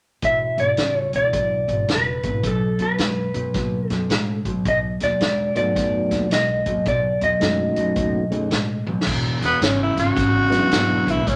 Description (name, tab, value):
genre	electric blues shuffle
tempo	109 BPM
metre	4/4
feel	swing 64% on 8ths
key	unclear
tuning	A4 = 437 Hz
part	electric guitar through a small old amp	melody	0.2-8.8 s	A4 to E5	-24 LUFS	equal	harmonic tremolo
part	overdriven semi-hollow guitar	riff	0.2-11.4 s	E2 to G#3	-27 LUFS	equal	none
part	upright bass	bass	0.2-11.4 s	E1 to A2	-30 LUFS	equal	none
part	vintage drum kit	drums	0.2-11.4 s	crash cymbal, hi-hat, kick drum, snare drum, toms	-28 LUFS	equal	none
part	percussive tonewheel organ	accompaniment	5.6-11.2 s	F#3 to G#4	-26 LUFS	equal	slow rotary speaker, chorus vibrato
part	growling tenor saxophone	second line	9.5-11.4 s	B3 to F#4	-23 LUFS	equal	none
room	wet studio reverb, RT60 0.8 s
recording	none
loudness	-21 LUFS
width	mono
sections	0.2-9.1 A section; 9.1-11.4 B section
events	drum fill 8.8; tenor saxophone solo 9.1-11.4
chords	0.2 E7; 2.4 B7; 9.1 E9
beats	| 0.23 0.78 1.33 1.89 | 2.44 2.99 3.55 4.10 | 4.65 5.21 5.76 6.31 | 6.86 7.42 7.97 8.52 | 9.07 9.62 10.17 10.72 | 11.27